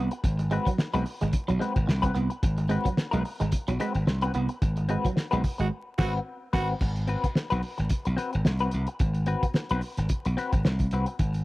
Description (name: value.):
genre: funk.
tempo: 110 BPM.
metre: 4/4.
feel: swing 56% on 16ths.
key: unclear.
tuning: A4 = 439 Hz.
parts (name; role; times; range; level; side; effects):
clean electric guitar; riff; 0.0-5.7 s; Gb3 to C4; -32 LUFS; right 5 dB; none.
slap bass; bass; 0.0-11.4 s; Ab1 to C2; -26 LUFS; equal; none.
electric guitar at the edge of break-up; accompaniment; 0.1-11.1 s; C4 to B4; -32 LUFS; left 4 dB; wah, spring reverb.
cloth-damped thuddy drum kit; drums; 0.1-11.4 s; crash cymbal, hi-hat, kick drum, snare drum; -26 LUFS; equal; none.
growling tenor saxophone; second line; 5.6-6.7 s; Gb4; -32 LUFS; right 5 dB; none.
room: little or no reverb.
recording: dry, close 1970s-style studio recording, vinyl crackle.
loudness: -24 LUFS.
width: side -19 dB against mid.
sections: 0.0-6.8 A section; 6.8-11.4 B section.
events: band accent 4.6-6.8.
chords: 0.0 Ab7#9.